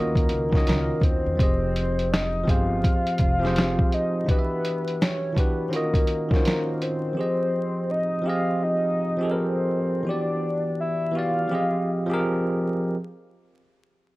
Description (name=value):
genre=lo-fi hip hop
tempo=83 BPM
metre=4/4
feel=swing 64% on 16ths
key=F minor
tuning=A4 = 440 Hz
part: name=warbly nostalgic lead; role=melody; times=0.0-12.2 s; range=Bb4 to F5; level=-27 LUFS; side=left 1 dB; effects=chorus, analog delay
part: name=bell-like tine electric piano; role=accompaniment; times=0.0-13.0 s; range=Eb3 to E5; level=-26 LUFS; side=equal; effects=medium stereo tremolo, cassette tape
part: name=upright bass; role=bass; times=0.0-3.7 s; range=F1 to E2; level=-28 LUFS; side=equal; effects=none
part: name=lo-fi sampler-style drum kit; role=drums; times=0.2-7.0 s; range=hi-hat, kick drum, snare drum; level=-22 LUFS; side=equal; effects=none
room=moderate studio reverb, RT60 0.6 s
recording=vinyl crackle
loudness=-21 LUFS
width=side -19 dB against mid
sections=0.0-13.0 A section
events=none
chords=0.0 Ebm9; 1.4 Fm9; 4.3 Em9; 5.7 Ebm9; 7.2 Fm9; 10.1 Em9; 11.5 Fm9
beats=0.67 | 1.39 2.11 2.83 3.56 | 4.28 5.00 5.73 6.45 | 7.17 7.89 8.62 9.34 | 10.06 10.79 11.51 12.23